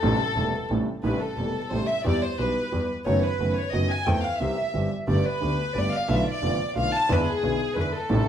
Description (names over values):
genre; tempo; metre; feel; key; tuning
tango; 178 BPM; 3/4; rubato; A minor; A4 = 441 Hz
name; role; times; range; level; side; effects
warm chamber violin section; second line; 0.0-8.3 s; G#4 to A5; -27 LUFS; left 1 dB; none
warm concert grand piano; accompaniment; 0.0-8.2 s; E1 to A4; -27 LUFS; right 2 dB; none
bright double bass; bass; 0.0-8.2 s; E1 to E2; -28 LUFS; equal; none
room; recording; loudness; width
moderate large studio reverb, RT60 1.1 s; band playing live in one room, vinyl crackle; -23 LUFS; side -9 dB against mid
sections
0.0-1.0 A section; 1.0-8.3 A section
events
violin section solo 0.0-1.0, 1.0-8.3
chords
0.0 Am7; 2.0 Em; 3.1 B7/F#; 4.1 Am/E; 4.4 C; 5.1 Gadd9; 6.1 Bm7b5; 7.1 E7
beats
| 0.02 0.36 0.70 | 1.04 1.38 1.71 | 2.05 2.38 2.72 | 3.05 3.39 3.73 | 4.06 4.40 4.74 | 5.07 5.41 5.75 | 6.08 6.42 6.75 | 7.09 7.42 7.76 | 8.09